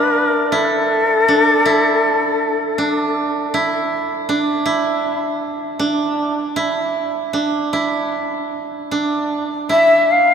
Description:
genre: japanese traditional, Japanese chamber music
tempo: 79 BPM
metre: 4/4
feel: rubato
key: unclear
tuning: A4 = 442 Hz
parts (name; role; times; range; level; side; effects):
- breathy shakuhachi; melody; 0.0-3.2, 9.7-10.3 s; A4 to F5; -15 LUFS; left 2 dB; none
- koto; second line; 0.0-10.3 s; D4 to E4; -18 LUFS; right 3 dB; none
room: wet cathedral reverb, RT60 5.6 s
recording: in a vast, echoing space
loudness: -15 LUFS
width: side -7 dB against mid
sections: 0.0-10.3 A section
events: none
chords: none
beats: | 0.51 1.27 2.03 2.79 | 3.54 4.29 5.04 5.80 | 6.57 7.34 8.12 8.92 | 9.71

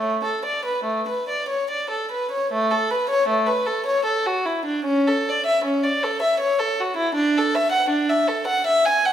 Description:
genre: classical, baroque-style suite movement for unaccompanied violin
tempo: 67-80 BPM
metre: 3/4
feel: rubato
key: A major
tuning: A4 = 441 Hz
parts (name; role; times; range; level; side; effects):
- warm violin; solo; 0.0-9.1 s; A3 to G#5; -19 LUFS; equal; none
room: wet recital hall reverb, RT60 1.5 s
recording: minimal, uncompressed stereo recording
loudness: -19 LUFS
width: side -10 dB against mid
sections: 0.0-2.5 A section; 2.5-9.1 B section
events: none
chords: none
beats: | 0.00 0.85 1.69 | 2.52 3.30 4.07 | 4.88 5.66 6.42 | 7.17 7.93 8.68

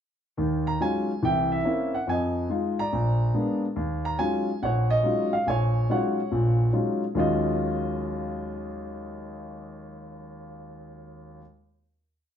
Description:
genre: solo jazz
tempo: 142 BPM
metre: 4/4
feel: swing 67% on 8ths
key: Eb minor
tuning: A4 = 441 Hz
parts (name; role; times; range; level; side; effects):
- warm concert grand piano; solo; 0.4-11.4 s; Bb1 to Bb5; -24 LUFS; equal; none
room: moderate large studio reverb, RT60 0.9 s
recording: band playing live in one room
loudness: -23 LUFS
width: side -9 dB against mid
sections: 0.4-7.2 A section; 7.2-10.6 final chord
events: none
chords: 0.4 Ebm11; 1.2 C7b9; 2.1 Fm7; 2.9 Bb7b9; 3.8 Ebm11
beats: | 0.38 0.80 1.23 1.65 | 2.08 2.50 2.93 3.35 | 3.77 4.20 4.62 5.04 | 5.47 5.89 6.32 6.74 | 7.16 7.59 8.01 8.43 | 8.86 9.28 9.71 10.13

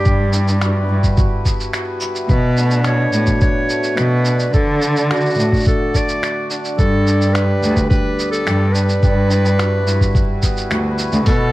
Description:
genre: folktronica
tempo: 107 BPM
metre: 4/4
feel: straight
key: unclear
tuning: A4 = 440 Hz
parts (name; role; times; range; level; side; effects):
- clear clarinet; melody; 0.0-11.5 s; F#4 to D5; -22 LUFS; right 1 dB; ping-pong delay
- pedal harmonium; sustained chords; 0.0-11.5 s; B2 to D5; -27 LUFS; left 1 dB; none
- hammered dulcimer; arpeggios; 0.0-11.5 s; G2 to G4; -23 LUFS; equal; vintage 12-bit sampler grit
- rich cello; bass; 0.1-11.5 s; D2 to D3; -17 LUFS; equal; none
- electronic kick drum; drums; 0.1-11.4 s; none; -16 LUFS; equal; none
- lo-fi sampler-style drum kit; drums; 0.1-11.4 s; finger snaps, hi-hat, shaker; -26 LUFS; right 1 dB; none
room: small room ambience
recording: vinyl crackle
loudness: -14 LUFS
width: side -17 dB against mid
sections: 0.0-11.5 A section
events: none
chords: 0.1 Emadd9/G; 2.3 Bm7; 6.8 G; 9.0 Emadd9/G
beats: | 0.06 0.62 1.18 1.74 | 2.30 2.86 3.42 3.98 | 4.54 5.10 5.66 6.22 | 6.79 7.35 7.91 8.47 | 9.03 9.59 10.15 10.71 | 11.27

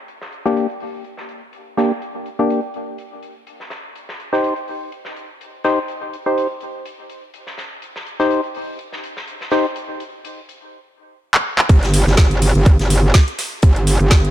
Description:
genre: bass house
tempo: 124 BPM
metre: 4/4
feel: swing 55% on 16ths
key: unclear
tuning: A4 = 440 Hz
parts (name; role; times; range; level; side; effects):
- huge arena drum kit; drums; 0.1-14.2 s; hi-hat, snare drum; -32 LUFS; left 1 dB; high-pass filter on hats, low-pass filter on hats, high-pass filter on snare, low-pass filter on snare, high-pass filter on room, low-pass filter on room
- percussive organ stab; stabs; 0.5-9.7 s; Bb3 to C5; -20 LUFS; left 1 dB; chorus, sidechain pumping, dub echo
- garage drum kit; drums; 11.3-14.3 s; handclaps, hi-hat, snare drum; -18 LUFS; equal; low-pass filter on snare, low-pass filter on hats, low-pass filter on cymbals, low-pass filter on room
- metallic wobble bass; bass; 11.7-14.3 s; G1; -14 LUFS; equal; distortion, chorus, sidechain pumping
- electronic kick drum; drums; 11.7-14.2 s; none; -10 LUFS; equal; overdrive
room: light reverb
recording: none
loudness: -15 LUFS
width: side -12 dB against mid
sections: 0.0-11.7 A section; 11.7-14.3 B section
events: filter sweep on synth stab 0.0-11.7; drum fill 11.3-11.7; drop 11.7-14.3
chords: 0.0 Gm; 4.0 Cm; 11.7 N.C.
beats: | 0.08 0.56 1.05 1.53 | 2.02 2.50 2.98 3.47 | 3.95 4.43 4.92 5.40 | 5.89 6.37 6.86 7.34 | 7.82 8.31 8.79 9.27 | 9.76 10.24 10.73 11.21 | 11.69 12.18 12.66 13.14 | 13.63 14.11

